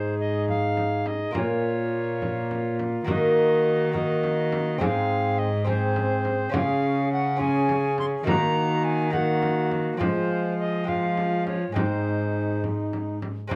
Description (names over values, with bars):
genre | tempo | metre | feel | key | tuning
classical, renaissance-style consort dance | 69 BPM (dotted quarters) | 6/8 | straight | unclear | A4 = 440 Hz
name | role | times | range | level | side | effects
tenor recorder | melody | 0.0-13.6 s | C5 to C6 | -31 LUFS | equal | none
tenor recorder | second line | 0.0-13.6 s | Eb4 to Ab4 | -32 LUFS | equal | none
clear trombone | accompaniment | 0.0-13.6 s | Ab3 to Eb4 | -33 LUFS | equal | none
lute | accompaniment | 0.0-13.6 s | Ab2 to C5 | -32 LUFS | equal | none
rich cello | bass | 0.0-13.6 s | Ab2 to F3 | -31 LUFS | equal | none
frame drum | percussion | 0.5-13.6 s | none | -34 LUFS | equal | none
room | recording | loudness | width
little or no reverb | close, detailed microphones | -25 LUFS | mono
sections
0.0-13.5 A section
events
none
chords
0.0 Ab; 1.3 Bbm; 3.1 Ebm; 4.8 Ab; 6.5 Db; 8.3 Ebm; 10.0 Fm; 11.8 Ab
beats
0.48 | 1.35 2.22 | 3.08 3.95 | 4.81 5.68 | 6.54 7.40 | 8.27 9.13 | 10.00 10.87 | 11.75 12.63 | 13.51